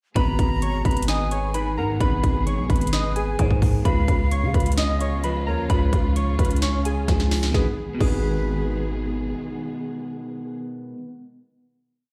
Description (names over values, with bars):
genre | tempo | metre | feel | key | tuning
hip hop, trap | 130 BPM | 4/4 | half-time | G# dorian | A4 = 441 Hz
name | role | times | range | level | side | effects
warbly lo-fi synth keys | melody | 0.2-8.9 s | G#4 to D#6 | -31 LUFS | equal | chorus, digital delay
breathy jazz flute | second line | 0.2-8.9 s | B4 to A#5 | -35 LUFS | equal | digital delay
electric guitar through a small old amp | accompaniment | 0.2-11.1 s | B2 to B4 | -32 LUFS | equal | none
dark symphonic string section | sustained chords | 0.2-10.5 s | C#3 to G#4 | -38 LUFS | equal | none
growling 808-style bass | bass | 0.2-9.3 s | G#1 to C#3 | -26 LUFS | equal | none
trap drum kit | drums | 0.2-8.1 s | crash cymbal, hi-hat, kick drum, snare drum | -25 LUFS | equal | none
room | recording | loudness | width
little or no reverb | played on a big sound system in a bare room, large studio reverb | -22 LUFS | mono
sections
0.2-7.5 hook; 7.5-11.2 final chord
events
drum fill 7.1-7.5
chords
0.2 G#m; 3.9 C#7; 7.5 G#m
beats
| 0.16 0.62 1.08 1.54 | 2.00 2.47 2.93 3.39 | 3.85 4.31 4.77 5.24 | 5.70 6.16 6.62 7.08 | 7.54 8.01 8.47 8.93 | 9.39 9.85 10.31 10.77